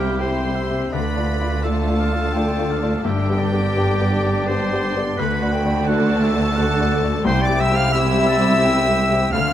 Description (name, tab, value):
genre	cinematic, emotional film score for orchestra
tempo	86 BPM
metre	3/4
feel	rubato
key	unclear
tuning	A4 = 440 Hz
part	clear studio violin section	melody	0.0-9.5 s	G5 to F6	-28 LUFS	equal	none
part	bright clarinet	second line	0.0-9.5 s	G4 to F5	-24 LUFS	left 1 dB	none
part	rich studio violin section	second line	0.0-9.5 s	D4 to G4	-30 LUFS	left 1 dB	none
part	warm oboe	second line	0.0-9.5 s	D5 to A5	-28 LUFS	right 1 dB	none
part	felt-muted upright piano	accompaniment	0.0-9.5 s	C2 to E5	-24 LUFS	left 3 dB	none
part	warm studio viola section	accompaniment	0.0-9.5 s	D3 to D4	-27 LUFS	equal	none
part	concert harp	arpeggios	0.0-9.5 s	G2 to E5	-29 LUFS	left 8 dB	none
part	warm studio cello section	bass	0.0-9.5 s	C2 to G2	-24 LUFS	right 2 dB	none
part	warm studio double bass section	bass	0.0-9.5 s	G1 to D2	-25 LUFS	right 3 dB	none
room	light reverb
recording	close, detailed microphones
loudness	-17 LUFS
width	side -11 dB against mid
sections	0.0-9.5 A section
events	none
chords	0.0 C; 0.9 Dm; 3.0 G; 5.2 D; 7.3 C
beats	0.20 | 0.93 1.64 2.34 | 3.04 3.75 4.48 | 5.19 5.88 6.58 | 7.26 7.94 8.63 | 9.33